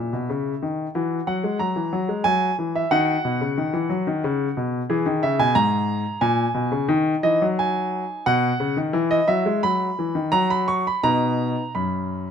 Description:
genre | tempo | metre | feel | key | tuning
classical-period piano sonatina | 83-92 BPM | 3/4 | rubato | B major | A4 = 441 Hz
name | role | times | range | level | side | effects
clear baby grand piano | solo | 0.0-12.3 s | F#2 to C#6 | -20 LUFS | equal | none
room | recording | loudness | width
light reverb | close, detailed microphones | -20 LUFS | side -7 dB against mid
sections
0.0-12.3 A section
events
none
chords
0.0 C#m; 0.9 F#7/E; 2.9 B; 4.9 E; 6.2 A#m7; 6.9 D#m; 8.3 Badd9; 8.9 Emaj9; 9.6 B/F#; 10.3 N.C.; 11.0 B

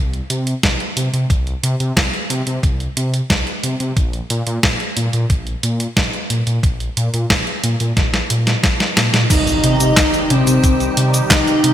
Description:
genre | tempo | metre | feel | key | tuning
synthwave | 90 BPM | 4/4 | straight | C minor | A4 = 438 Hz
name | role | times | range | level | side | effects
dark detuned saw bass | bass | 0.0-11.7 s | Bb1 to C3 | -19 LUFS | equal | sidechain pumping
clean 12-bit digital drum machine | drums | 0.1-11.7 s | crash cymbal, handclaps, hi-hat, shaker, snare drum | -18 LUFS | equal | none
electronic kick drum | drums | 0.6-11.4 s | none | -18 LUFS | equal | none
warm velvety synth lead | melody | 9.3-11.7 s | C4 to Eb4 | -18 LUFS | left 1 dB | chorus, ping-pong delay
airy dreamy lead | second line | 9.3-11.7 s | C4 to Eb4 | -22 LUFS | equal | chorus
warm analog pad | sustained chords | 9.7-11.7 s | C3 to G4 | -22 LUFS | right 1 dB | chorus, sidechain pumping
impact | sound effects | 9.3-11.7 s | none | -26 LUFS | equal | none
room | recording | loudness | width
moderate lush hall reverb, RT60 2.8 s | bright 1980s-style digital production | -14 LUFS | side -11 dB against mid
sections
0.0-9.3 A section; 9.3-11.7 B section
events
drum fill 8.0-9.3; impact 9.3-11.7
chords
0.0 N.C.; 9.3 Cm

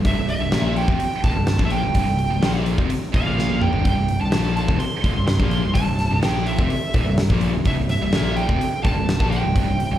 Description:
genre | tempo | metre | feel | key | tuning
hard rock | 126 BPM | 4/4 | straight | C mixolydian | A4 = 440 Hz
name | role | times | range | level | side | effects
heavy high-gain guitar | riff | 0.0-10.0 s | C2 to Bb3 | -28 LUFS | right 8 dB | distortion, slapback echo
overdriven semi-hollow guitar | riff | 0.0-10.0 s | C2 to Bb3 | -26 LUFS | left 6 dB | slapback echo
fingered electric bass | bass | 0.0-10.0 s | C1 to Bb1 | -24 LUFS | equal | none
huge arena drum kit | drums | 0.0-9.9 s | hi-hat, kick drum, snare drum, toms | -22 LUFS | equal | none
smooth overdriven lead guitar | melody | 0.1-10.0 s | E5 to C6 | -26 LUFS | right 3 dB | slapback echo
room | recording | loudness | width
little or no reverb | live gig heard through the venue's PA, club reverb | -18 LUFS | side -12 dB against mid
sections
0.0-10.0 A section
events
drum fill 3.4-3.9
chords
0.0 C; 3.3 Bb5; 3.7 C5

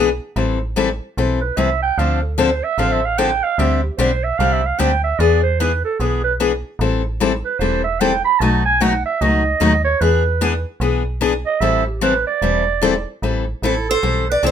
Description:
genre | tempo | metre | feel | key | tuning
acoustic string swing (jazz manouche) | 149 BPM | 4/4 | swing 62% on 8ths | A minor | A4 = 440 Hz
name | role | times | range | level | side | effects
picked steel-string acoustic guitar | accompaniment | 0.0-14.5 s | B2 to A4 | -18 LUFS | left 6 dB | none
metallic FM bass | bass | 0.0-14.5 s | E1 to E2 | -21 LUFS | right 1 dB | none
growling clarinet | second line | 1.4-14.5 s | E4 to B5 | -19 LUFS | right 7 dB | none
picked steel-string acoustic guitar | melody | 13.7-14.5 s | A4 to D5 | -18 LUFS | right 2 dB | none
room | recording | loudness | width
light reverb | minimal, uncompressed stereo recording | -15 LUFS | side -8 dB against mid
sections
0.4-13.2 A section; 13.2-14.5 B section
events
clarinet solo 0.4-13.2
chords
0.4 Am7; 2.0 Dm7; 3.6 D7sus4; 5.2 E7; 6.8 Am7; 8.4 B7; 10.0 E7; 11.6 Am7

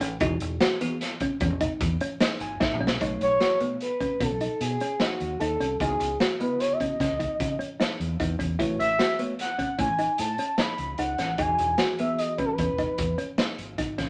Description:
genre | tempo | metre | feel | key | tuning
progressive instrumental, band music in an uneven meter | 150 BPM | 7/4 | straight | B mixolydian | A4 = 440 Hz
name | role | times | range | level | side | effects
thumb-piano-like synth pluck | arpeggios | 0.0-14.1 s | B3 to F#4 | -33 LUFS | equal | chorus
fingered electric bass | bass | 0.0-14.1 s | E1 to C#3 | -34 LUFS | equal | none
raw garage drum kit | drums | 0.0-14.1 s | hi-hat, kick drum, snare drum, toms | -32 LUFS | equal | none
bell-like tine electric piano | accompaniment | 0.2-12.5 s | B2 to G#5 | -37 LUFS | equal | none
expressive synth lead | melody | 3.2-13.2 s | F#4 to B5 | -29 LUFS | equal | chorus
room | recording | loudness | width
moderate studio reverb, RT60 0.6 s | none | -26 LUFS | mono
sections
0.0-3.0 A section; 3.0-14.1 B section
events
tine electric piano fill 2.2-3.0; drum fill 2.6-3.0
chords
0.2 Emaj9; 3.0 B9; 5.8 C#m11; 8.6 A69; 11.4 Emaj9

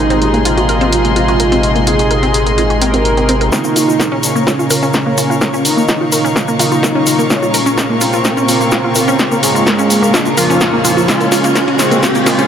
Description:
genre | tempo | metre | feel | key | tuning
melodic techno | 127 BPM | 4/4 | straight | Bb minor | A4 = 439 Hz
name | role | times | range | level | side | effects
fat analog lead | melody | 0.0-12.5 s | F3 to Bb4 | -16 LUFS | right 1 dB | analog chorus, sidechain pumping, tape echo
warm studio string section | sustained chords | 0.0-12.5 s | Ab4 to Db6 | -20 LUFS | left 2 dB | vintage 12-bit sampler grit, sidechain pumping
sync-sweep polysynth | stabs | 0.0-12.5 s | C3 to F4 | -18 LUFS | right 1 dB | chorus, sidechain pumping, tape echo
round analog bass | bass | 0.0-12.5 s | F1 to Bb2 | -21 LUFS | equal | sidechain pumping, high-pass filter
analog drone | drone | 0.1-12.5 s | Bb2 to Bb3 | -25 LUFS | equal | chorus, sidechain pumping
wide unison pluck | arpeggios | 0.1-12.4 s | Bb3 to Bb4 | -18 LUFS | equal | sidechain pumping, tape echo
punchy analog drum machine | drums | 0.1-12.5 s | hi-hat, snare drum | -18 LUFS | equal | sidechain pumping on hats, high-pass filter on hats, high-pass filter on snare
electronic kick drum | drums | 3.5-12.1 s | none | -23 LUFS | equal | none
egg shaker | percussion | 3.5-12.5 s | none | -22 LUFS | left 3 dB | none
riser | sound effects | 6.0-12.5 s | none | -23 LUFS | equal | none
room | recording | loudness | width
wet huge ambient reverb, RT60 7.1 s | dreamy mix soaked in reverb, faint mains hum | -10 LUFS | side -8 dB against mid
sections
0.0-3.5 A section; 3.5-12.5 B section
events
filter sweep on analog polysynth 0.0-3.5, 3.5-12.5; build-up 3.5-12.5; drum fill 3.5-12.5; filter sweep on synth arpeggio sound 3.5-12.5; riser 6.0-12.5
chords
0.0 Ab; 3.5 Bbm; 11.1 Db

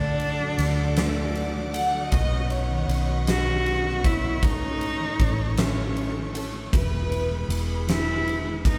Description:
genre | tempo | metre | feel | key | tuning
six-eight pop ballad | 52 BPM (dotted quarters) | 6/8 | straight | E major | A4 = 438 Hz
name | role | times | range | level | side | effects
rich cello | melody | 0.0-8.8 s | A3 to F#4 | -30 LUFS | equal | none
twelve-string electric guitar | accompaniment | 0.0-8.8 s | A2 to E4 | -35 LUFS | equal | none
clear studio string section | sustained chords | 0.0-8.8 s | G#4 to D6 | -38 LUFS | equal | none
vintage muted fingered electric bass | bass | 0.0-8.8 s | E1 to D2 | -30 LUFS | equal | none
huge arena drum kit | drums | 0.2-8.8 s | kick drum, ride cymbal, snare drum | -29 LUFS | equal | none
warm studio violin section | second line | 1.7-7.7 s | A4 to F#5 | -32 LUFS | equal | none
room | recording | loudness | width
moderate studio reverb, RT60 0.6 s | band playing live in one room | -25 LUFS | mono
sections
0.0-8.8 A section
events
none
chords
0.0 D; 2.1 Badd9; 4.4 A; 6.7 E

